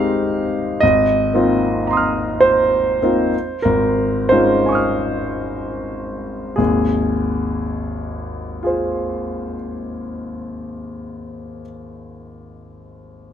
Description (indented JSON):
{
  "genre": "classical, impressionist solo piano",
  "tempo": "24-41 BPM (dotted quarters)",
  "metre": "9/8",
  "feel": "rubato",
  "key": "Ab major",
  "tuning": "A4 = 440 Hz",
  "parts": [
    { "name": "clear concert grand piano", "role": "solo", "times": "0.0-13.3 s", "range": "Ab1 to F6", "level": "-17 LUFS", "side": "equal", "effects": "none" }
  ],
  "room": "light reverb",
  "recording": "close, detailed microphones",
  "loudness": "-16 LUFS",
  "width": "side -9 dB against mid",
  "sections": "0.0-6.6 A section; 6.6-12.8 B section",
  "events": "slowing down 0.0-6.6",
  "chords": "0.0 Abmaj7; 0.8 Ab69; 3.3 Dbmaj9/Ab; 6.6 Ab6",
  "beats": "| 0.82 2.43 4.30 | 6.58 8.62 10.70"
}